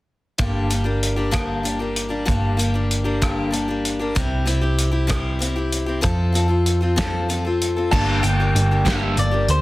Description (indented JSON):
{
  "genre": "folk rock and heartland rock",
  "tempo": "64 BPM (dotted quarters)",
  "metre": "6/8",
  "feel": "straight",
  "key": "G dorian",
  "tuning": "A4 = 440 Hz",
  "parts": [
    { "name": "picked steel-string acoustic guitar", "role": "accompaniment", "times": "0.4-9.6 s", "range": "G2 to A4", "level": "-23 LUFS", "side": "left 2 dB", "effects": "none" },
    { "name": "hollow-body short-scale picked electric bass", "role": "bass", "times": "0.4-9.6 s", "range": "G1 to F2", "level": "-22 LUFS", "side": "equal", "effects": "none" },
    { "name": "cloth-damped thuddy drum kit", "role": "drums", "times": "0.4-9.6 s", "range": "crash cymbal, hi-hat, kick drum, rim click, snare drum", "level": "-24 LUFS", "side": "equal", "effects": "none" },
    { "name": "mandolin", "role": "melody", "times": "7.9-9.6 s", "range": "C5 to A5", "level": "-23 LUFS", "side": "equal", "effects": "none" },
    { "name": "overdriven electric guitar", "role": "riff", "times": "7.9-9.5 s", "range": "G2 to G3", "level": "-24 LUFS", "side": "right 1 dB", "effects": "none" }
  ],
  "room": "light reverb",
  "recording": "dense, heavily limited modern master",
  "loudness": "-18 LUFS",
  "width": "side -18 dB against mid",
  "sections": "0.4-7.9 A section; 7.9-9.6 B section",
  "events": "none",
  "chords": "0.4 Gm; 4.2 C; 6.0 F; 7.9 Gm",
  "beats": "| 0.39 1.33 | 2.27 3.21 | 4.16 5.10 | 6.04 6.98 | 7.92 8.86"
}